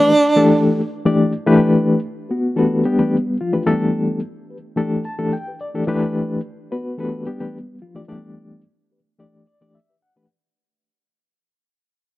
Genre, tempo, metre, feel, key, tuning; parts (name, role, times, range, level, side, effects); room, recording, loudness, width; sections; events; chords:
jazz; 109 BPM; 4/4; straight; G major; A4 = 440 Hz
breathy tenor saxophone; melody; 0.0-0.9 s; D4; -14 LUFS; right 1 dB; slapback echo
barky reed electric piano; accompaniment; 0.0-10.3 s; E3 to A5; -17 LUFS; left 2 dB; overdrive, fast tremolo
light reverb, small room reverb; dry, close 1970s-style studio recording; -16 LUFS; side -17 dB against mid
0.0-1.5 A section; 1.5-10.3 B section
fade-out 1.5-10.3; reed electric piano fill 4.8-5.9, 9.2-10.3
0.0 Gsus2; 1.5 Gmaj9